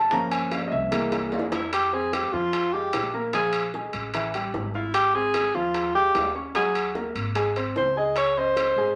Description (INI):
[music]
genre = Afro-Cuban jazz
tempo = 149 BPM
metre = 4/4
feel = straight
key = F minor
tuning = A4 = 440 Hz
[part]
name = clear baby grand piano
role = accompaniment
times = 0.0-9.0 s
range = E3 to Ab6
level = -30 LUFS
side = equal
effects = none
[part]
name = upright bass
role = bass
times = 0.0-9.0 s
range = G1 to F2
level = -39 LUFS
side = equal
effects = none
[part]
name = bongos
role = percussion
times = 0.1-9.0 s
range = none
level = -37 LUFS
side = equal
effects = none
[part]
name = timbales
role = percussion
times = 0.3-8.8 s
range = none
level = -34 LUFS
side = equal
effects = none
[part]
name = breathy alto saxophone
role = melody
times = 1.5-9.0 s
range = E4 to Eb5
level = -25 LUFS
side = equal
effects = none
[sound]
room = wet club reverb, RT60 0.6 s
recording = none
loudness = -25 LUFS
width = mono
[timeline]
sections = 0.0-1.7 A section; 1.7-9.0 B section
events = grand piano solo 0.0-1.7; drum fill 1.1-1.7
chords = 0.1 Gm7b5; 0.9 Caug7; 1.7 Fmadd9; 3.3 Bb5; 4.1 A5; 4.9 Ab6; 6.6 Ebm; 7.4 Ab; 8.2 Dbsus2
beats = | 0.12 0.52 0.92 1.32 | 1.73 2.13 2.53 2.93 | 3.33 3.74 4.14 4.54 | 4.94 5.35 5.75 6.15 | 6.55 6.96 7.36 7.76 | 8.16 8.57